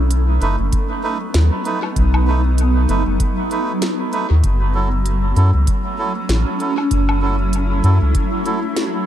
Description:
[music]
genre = ambient dub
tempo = 97 BPM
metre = 4/4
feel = swing 57% on 16ths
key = F# dorian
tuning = A4 = 445 Hz
[part]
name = granular cloud pad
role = sustained chords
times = 0.0-9.1 s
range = F#3 to A4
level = -22 LUFS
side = right 1 dB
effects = built-in reverb
[part]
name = round analog bass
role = bass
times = 0.0-8.1 s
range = F#1 to F#2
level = -15 LUFS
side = equal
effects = none
[part]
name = organic electronic drum kit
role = drums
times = 0.1-8.9 s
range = hi-hat, snare drum, woodblock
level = -27 LUFS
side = left 1 dB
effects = dub echo
[part]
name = melodica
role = stabs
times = 0.4-8.6 s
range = F#3 to B4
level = -24 LUFS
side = right 3 dB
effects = dub echo
[part]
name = electronic kick drum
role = drums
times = 0.7-8.3 s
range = none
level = -20 LUFS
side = equal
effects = none
[sound]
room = light reverb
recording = none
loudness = -15 LUFS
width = side -11 dB against mid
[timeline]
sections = 0.0-9.1 A section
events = none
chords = 0.0 B7; 4.4 F#m7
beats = 0.11 0.73 1.34 | 1.96 2.58 3.20 3.82 | 4.44 5.06 5.67 6.29 | 6.91 7.53 8.15 8.77

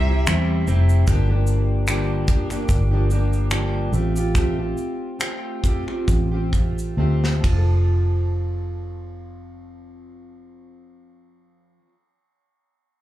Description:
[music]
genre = acoustic pop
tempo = 64-75 BPM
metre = 4/4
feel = swing 55% on 16ths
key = F major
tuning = A4 = 442 Hz
[part]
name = bright upright piano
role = accompaniment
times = 0.0-1.1 s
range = E4 to Bb5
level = -38 LUFS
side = left 4 dB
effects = plate reverb, slapback echo
[part]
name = fingerpicked plugged-in steel-string acoustic guitar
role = accompaniment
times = 0.0-12.0 s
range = G2 to A4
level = -26 LUFS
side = equal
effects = double-tracked left and right, plate reverb, slapback echo
[part]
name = electric guitar at the edge of break-up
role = arpeggios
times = 0.0-1.7 s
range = G3 to G4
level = -34 LUFS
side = right 4 dB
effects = plate reverb, slapback echo, tape echo
[part]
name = vintage muted fingered electric bass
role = bass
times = 0.0-11.8 s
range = F1 to E2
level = -20 LUFS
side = equal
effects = none
[part]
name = modern studio drum kit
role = drums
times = 0.3-7.7 s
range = finger snaps, kick drum, ride cymbal, shaker, snare drum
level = -23 LUFS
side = equal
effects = none
[sound]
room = little or no reverb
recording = live gig heard through the venue's PA, club ambience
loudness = -18 LUFS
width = side -14 dB against mid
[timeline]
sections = 0.0-1.1 A section; 1.1-7.9 B section; 7.9-11.7 C section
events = slowing down 1.1-7.9; drum fill 7.0-7.9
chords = 0.0 C; 1.1 Gm7; 3.9 Fadd9/A; 7.4 F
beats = 0.27 | 1.07 1.88 2.69 3.51 | 4.35 5.20 6.08 6.97 | 7.91 8.85 9.79 10.74

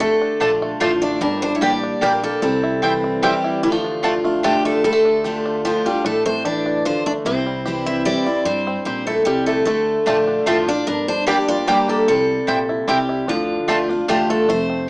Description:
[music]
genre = bluegrass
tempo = 149 BPM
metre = 3/4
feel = straight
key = D minor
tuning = A4 = 441 Hz
[part]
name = bluegrass banjo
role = melody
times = 0.0-14.9 s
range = G3 to G4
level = -28 LUFS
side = right 1 dB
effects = none
[part]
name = picked steel-string acoustic guitar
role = melody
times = 0.0-14.9 s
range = F4 to E5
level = -20 LUFS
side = equal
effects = none
[part]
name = lap resonator guitar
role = second line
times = 0.0-14.1 s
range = F3 to G4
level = -25 LUFS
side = left 1 dB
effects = none
[part]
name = picked steel-string acoustic guitar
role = accompaniment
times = 0.0-14.9 s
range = F2 to G4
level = -22 LUFS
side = equal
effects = none
[part]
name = upright bass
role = bass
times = 0.0-14.9 s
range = F1 to G2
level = -31 LUFS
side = equal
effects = none
[part]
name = mandolin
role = stabs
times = 0.4-4.5, 10.1-14.2 s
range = A3 to A5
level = -19 LUFS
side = right 1 dB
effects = none
[sound]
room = wet studio reverb, RT60 0.5 s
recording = rough home demo mix, small speaker sound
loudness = -16 LUFS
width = side -28 dB against mid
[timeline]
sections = 0.0-4.8 A section; 4.8-14.5 A section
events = none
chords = 0.0 Dm; 1.2 Gm; 2.4 C; 3.6 Dm; 7.3 C; 9.7 Dm; 10.9 Gm; 12.1 C; 13.3 Dm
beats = | 0.01 0.41 0.81 | 1.22 1.62 2.02 | 2.43 2.83 3.23 | 3.63 4.04 4.44 | 4.84 5.24 5.65 | 6.05 6.45 6.85 | 7.25 7.66 8.06 | 8.46 8.86 9.27 | 9.67 10.07 10.47 | 10.87 11.28 11.68 | 12.08 12.48 12.88 | 13.29 13.69 14.09 | 14.49 14.89

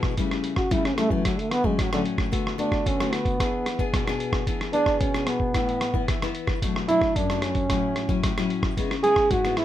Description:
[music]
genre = samba and choro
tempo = 112 BPM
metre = 4/4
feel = straight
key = A major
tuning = A4 = 440 Hz
[part]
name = nylon-string guitar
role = accompaniment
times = 0.0-9.6 s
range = F#2 to G#4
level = -28 LUFS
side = left 5 dB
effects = none
[part]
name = lo-fi sampler-style drum kit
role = drums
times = 0.0-9.6 s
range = hi-hat, kick drum, rim click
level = -26 LUFS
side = right 1 dB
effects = none
[part]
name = mellow trombone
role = melody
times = 0.6-9.6 s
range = D3 to G#4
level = -24 LUFS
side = right 2 dB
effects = none
[sound]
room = moderate studio reverb, RT60 0.5 s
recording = none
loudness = -22 LUFS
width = side -12 dB against mid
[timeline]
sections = 0.0-9.6 A section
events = trombone solo 0.0-9.6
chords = 0.2 A7/C#; 1.3 Dmaj7; 2.3 Bm7/D; 3.4 E7; 5.5 Asus2; 6.6 Bm7; 7.7 F#m7/A; 8.8 C#m7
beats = 0.18 0.72 | 1.25 1.79 2.33 2.86 | 3.40 3.94 4.47 5.01 | 5.55 6.09 6.62 7.16 | 7.70 8.23 8.77 9.31

